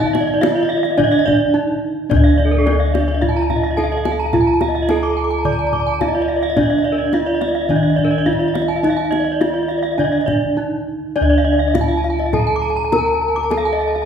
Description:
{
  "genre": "Balinese gamelan",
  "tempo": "105 BPM",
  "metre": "4/4",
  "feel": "uneven beats",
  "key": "D pelog",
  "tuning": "A4 = 438 Hz",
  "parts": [
    { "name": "gamelan-type bronze metallophone", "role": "melody", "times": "0.0-14.1 s", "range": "D4 to D5", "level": "-20 LUFS", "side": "right 3 dB", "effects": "none" },
    { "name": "gamelan-type bronze metallophone", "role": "arpeggios", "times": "0.0-14.0 s", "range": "A4-30c to D6", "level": "-22 LUFS", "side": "right 4 dB", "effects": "none" },
    { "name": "gamelan-type bossed gongs", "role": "bass", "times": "0.0-14.1 s", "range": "D2 to A4-30c", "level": "-20 LUFS", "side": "left 2 dB", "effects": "none" },
    { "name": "kendang", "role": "percussion", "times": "0.0-14.0 s", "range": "none", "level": "-25 LUFS", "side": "left 2 dB", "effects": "none" },
    { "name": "gamelan-type bronze metallophone", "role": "arpeggios", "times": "0.1-14.1 s", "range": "A4-30c to D6", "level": "-22 LUFS", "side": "left 4 dB", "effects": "none" }
  ],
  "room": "wet recital hall reverb, RT60 1.6 s",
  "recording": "recorded in a church or concert hall",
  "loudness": "-14 LUFS",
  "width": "side -8 dB against mid",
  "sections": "0.0-11.2 A section; 11.2-14.1 B section",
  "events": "break 1.3-2.1, 10.3-11.2; drum fill 1.7-2.1",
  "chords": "none"
}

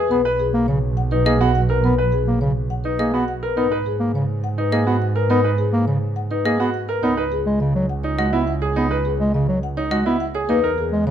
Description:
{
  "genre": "classical, minimalist pattern music",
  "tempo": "104 BPM",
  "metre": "3/4",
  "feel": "straight",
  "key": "G# minor",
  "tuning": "A4 = 440 Hz",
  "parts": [
    { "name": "marimba with soft mallets", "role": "melody", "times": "0.0-11.1 s", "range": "G#4 to F#5", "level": "-25 LUFS", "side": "left 11 dB", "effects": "none" },
    { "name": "bright concert grand piano", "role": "arpeggios", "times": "0.0-10.8 s", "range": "D#4 to B4", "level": "-23 LUFS", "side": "right 4 dB", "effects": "none" },
    { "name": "mellow bass clarinet", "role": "accompaniment", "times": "0.1-11.1 s", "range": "C#3 to B3", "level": "-22 LUFS", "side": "equal", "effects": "none" },
    { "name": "warm double bass", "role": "bass", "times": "0.1-11.1 s", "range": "B1 to G#2", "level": "-23 LUFS", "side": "right 2 dB", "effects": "none" },
    { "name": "xylophone with plastic mallets", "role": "arpeggios", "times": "1.3-10.1 s", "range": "D#5", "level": "-28 LUFS", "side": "left 3 dB", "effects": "none" }
  ],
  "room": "light reverb",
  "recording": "close, detailed microphones",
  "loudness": "-17 LUFS",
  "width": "side -9 dB against mid",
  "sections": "0.0-11.1 A section",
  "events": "none",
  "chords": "0.1 Bmaj7; 3.6 G#m9; 7.0 C#7sus2; 10.5 Emaj7#11"
}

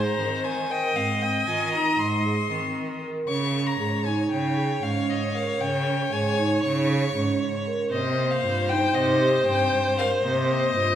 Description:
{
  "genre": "contemporary instrumental, chamber music in an uneven meter",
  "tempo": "233 BPM (eighths)",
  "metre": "9/8",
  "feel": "straight",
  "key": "unclear",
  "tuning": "A4 = 444 Hz",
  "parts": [
    { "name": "warm violin", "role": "melody", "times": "0.0-11.0 s", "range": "Eb5 to Db6", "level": "-28 LUFS", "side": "left 5 dB", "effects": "none" },
    { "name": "clear viola", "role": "second line", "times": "0.0-11.0 s", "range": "C5 to Eb5", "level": "-26 LUFS", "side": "equal", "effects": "none" },
    { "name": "vibraphone with soft mallets", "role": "arpeggios", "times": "0.0-11.0 s", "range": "Bb3 to Bb4", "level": "-28 LUFS", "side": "right 3 dB", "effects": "none" },
    { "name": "rich cello", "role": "bass", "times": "0.0-11.0 s", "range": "G2 to Eb3", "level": "-28 LUFS", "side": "right 1 dB", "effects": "none" }
  ],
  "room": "wet recital hall reverb, RT60 1.6 s",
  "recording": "recorded in a church or concert hall",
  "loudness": "-22 LUFS",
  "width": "side -10 dB against mid",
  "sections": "0.0-11.0 A section",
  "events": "none",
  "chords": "0.0 Ab; 3.3 Dbsus2; 7.9 Cm7"
}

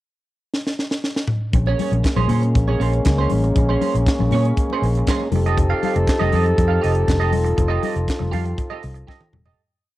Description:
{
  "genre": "disco",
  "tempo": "119 BPM",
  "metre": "4/4",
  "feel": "straight",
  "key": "Bb dorian",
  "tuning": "A4 = 440 Hz",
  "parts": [
    { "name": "tight funk drum kit", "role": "drums", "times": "0.5-9.6 s", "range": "handclaps, hi-hat, kick drum, snare drum, toms", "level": "-22 LUFS", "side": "equal", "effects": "cassette tape" },
    { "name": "clean electric guitar", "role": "accompaniment", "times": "1.5-9.6 s", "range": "Db4 to F5", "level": "-26 LUFS", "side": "right 8 dB", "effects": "analog chorus" },
    { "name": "mellow French horn section", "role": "sustained chords", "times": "1.5-9.6 s", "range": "F3 to A4", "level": "-23 LUFS", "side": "left 1 dB", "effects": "none" },
    { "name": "fingered electric bass", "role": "bass", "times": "1.5-9.5 s", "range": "E1 to Bb2", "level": "-19 LUFS", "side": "equal", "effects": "none" },
    { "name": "congas", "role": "percussion", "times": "1.5-9.4 s", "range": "none", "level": "-29 LUFS", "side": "left 8 dB", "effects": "none" }
  ],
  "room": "light reverb, small room ambience",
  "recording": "home recording on cassette",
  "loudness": "-17 LUFS",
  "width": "side -16 dB against mid",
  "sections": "0.0-1.5 pickup bar; 1.5-9.6 verse",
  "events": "drum fill 0.5-1.5, 9.1-9.6; fade-out 7.6-9.6",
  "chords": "0.0 N.C.; 1.5 Bbm9; 5.3 F9"
}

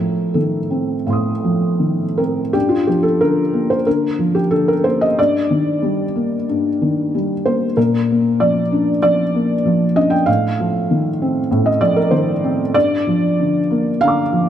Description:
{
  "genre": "neoclassical minimalist piano",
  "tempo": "80-99 BPM",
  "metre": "4/4",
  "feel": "rubato",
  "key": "G minor",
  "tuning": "A4 = 440 Hz",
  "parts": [
    { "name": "felt-muted upright piano", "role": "solo", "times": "0.0-14.5 s", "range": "G2 to Eb6", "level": "-14 LUFS", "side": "equal", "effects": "none" }
  ],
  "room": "moderate scoring stage reverb, RT60 2.1 s",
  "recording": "none",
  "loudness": "-14 LUFS",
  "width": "side -10 dB against mid",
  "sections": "0.0-2.5 A section; 2.5-14.5 A section",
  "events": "none",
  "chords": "0.0 F7/A; 2.5 Gm7; 5.2 Ebmaj7/G; 7.8 Bb; 10.3 F7/A; 12.8 Gm7"
}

